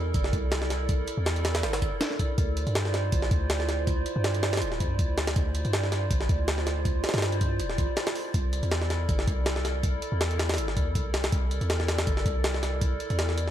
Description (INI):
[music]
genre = drum and bass, jungle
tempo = 161 BPM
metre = 4/4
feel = swing 54% on 16ths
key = unclear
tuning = A4 = 439 Hz
[part]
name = warbly tape-like pad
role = sustained chords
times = 0.0-13.5 s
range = E4 to D5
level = -33 LUFS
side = right 1 dB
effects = chorus, built-in reverb
[part]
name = long sustained 808-style bass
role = bass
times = 0.0-13.5 s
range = D1 to G2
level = -29 LUFS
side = equal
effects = tube saturation
[part]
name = jungle sampler-style drum kit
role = drums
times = 0.1-13.5 s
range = hi-hat, kick drum, snare drum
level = -28 LUFS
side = equal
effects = none
[sound]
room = digital ambience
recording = none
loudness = -25 LUFS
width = side -11 dB against mid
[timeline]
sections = 0.0-13.5 A section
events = none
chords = 0.0 C13; 2.4 Dm9; 8.3 C13